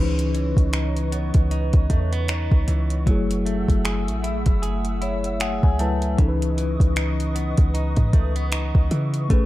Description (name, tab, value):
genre	contemporary R&B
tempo	77 BPM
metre	4/4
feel	swing 58% on 16ths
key	C# minor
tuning	A4 = 443 Hz
part	mellow tine electric piano	accompaniment	0.0-9.5 s	E3 to A5	-26 LUFS	left 3 dB	medium stereo tremolo
part	hollow soft pad	sustained chords	0.0-9.5 s	A3 to E6	-33 LUFS	equal	ensemble chorus
part	direct-recorded clean electric guitar	arpeggios	0.0-9.5 s	C#3 to G#4	-32 LUFS	right 5 dB	tape echo
part	clean 808-style bass	bass	0.0-9.5 s	F#1 to C#3	-23 LUFS	equal	none
part	smooth R&B drum kit	drums	0.2-9.5 s	finger snaps, hi-hat, kick drum	-20 LUFS	equal	none
room	little or no reverb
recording	dark, warm production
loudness	-19 LUFS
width	side -16 dB against mid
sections	0.0-9.5 A section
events	tine electric piano fill 4.6-6.2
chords	0.0 C#m9; 3.1 F#m9; 6.2 C#m9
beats	0.73 1.51 2.29 | 3.07 3.85 4.63 5.41 | 6.19 6.96 7.74 8.52 | 9.30